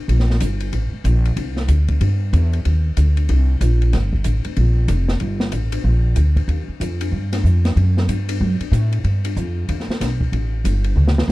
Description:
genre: jazz, small-group swing and bop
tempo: 188 BPM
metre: 4/4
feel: swing 63% on 8ths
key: G minor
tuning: A4 = 439 Hz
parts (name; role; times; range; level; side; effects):
- upright bass; bass; 0.1-11.3 s; F1 to A2; -16 LUFS; equal; none
- open jazz drum kit; drums; 0.1-11.3 s; hi-hat, kick drum, ride cymbal, snare drum, toms; -26 LUFS; left 2 dB; none
room: little or no reverb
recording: dry, close 1970s-style studio recording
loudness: -16 LUFS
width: side -19 dB against mid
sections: 0.0-11.3 A section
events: drum fill 11.0-11.3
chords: none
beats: | 0.09 0.41 0.73 1.05 | 1.37 1.69 2.01 2.33 | 2.65 2.97 3.29 3.61 | 3.93 4.25 4.57 4.89 | 5.21 5.53 5.85 6.17 | 6.49 6.81 7.13 7.45 | 7.76 8.09 8.40 8.72 | 9.04 9.37 9.69 10.01 | 10.32 10.64 10.97 11.29

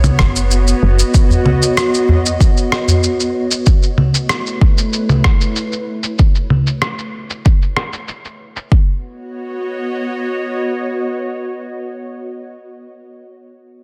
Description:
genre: organic downtempo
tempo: 95 BPM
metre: 4/4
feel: straight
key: B mixolydian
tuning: A4 = 438 Hz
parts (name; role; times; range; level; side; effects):
- bowed-like drone; sustained chords; 0.0-12.0 s; A3 to D#5; -23 LUFS; equal; built-in reverb, sidechain pumping
- woody FM bass; bass; 0.0-1.0 s; F#1 to B1; -15 LUFS; equal; sidechain pumping
- electronic congas, cabasa and rim click; drums; 0.0-8.7 s; none; -19 LUFS; equal; low-pass filter on hats, low-pass filter on perc, soft clipping on snare, low-pass filter on snare
- electronic kick drum; drums; 0.2-8.8 s; none; -14 LUFS; equal; none
- udu; percussion; 1.3-3.0 s; none; -18 LUFS; equal; none
room: light reverb, digital ambience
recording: dense, heavily limited modern master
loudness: -15 LUFS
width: mono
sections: 0.0-8.7 A section; 8.7-11.2 B section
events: filter sweep on synth drone 0.0-6.2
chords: 0.0 B; 3.7 A; 8.7 B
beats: 0.50 | 1.14 1.77 2.40 3.03 | 3.66 4.29 4.92 5.56 | 6.19 6.82 7.45 8.08 | 8.71 9.35 9.98 10.61

